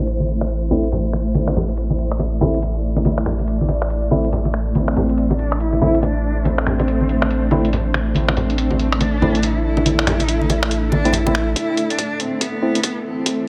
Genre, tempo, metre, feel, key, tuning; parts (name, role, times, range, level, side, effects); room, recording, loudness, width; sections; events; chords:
deep dubstep; 141 BPM; 4/4; swing 61% on 16ths, half-time; A minor; A4 = 440 Hz
granular cloud pad; sustained chords; 0.0-13.5 s; A3 to D5; -27 LUFS; equal; built-in reverb
saturated sub bass; bass; 0.0-11.5 s; A1; -23 LUFS; equal
trip hop sampler-style drum kit; drums; 0.1-13.4 s; finger snaps, hi-hat; -27 LUFS; equal; low-pass filter on hats, low-pass filter on snare
congas; percussion; 0.2-11.3 s; -25 LUFS; equal
percussive organ stab; stabs; 0.7-12.8 s; A3 to E4; -27 LUFS; equal; chorus, cassette tape, dub echo
warm cello; melody; 4.8-13.4 s; B3 to E4; -25 LUFS; equal; dub echo
electronic kick drum; drums; 11.6-13.4 s; -34 LUFS; equal
light reverb; low-pass filter; -19 LUFS; mono
0.0-11.6 A section; 11.6-13.5 B section
filter sweep on drum 0.0-11.6; filter sweep on synth stab 0.0-11.6; filter sweep 0.0-11.6; build-up 11.6-13.5
0.0 Am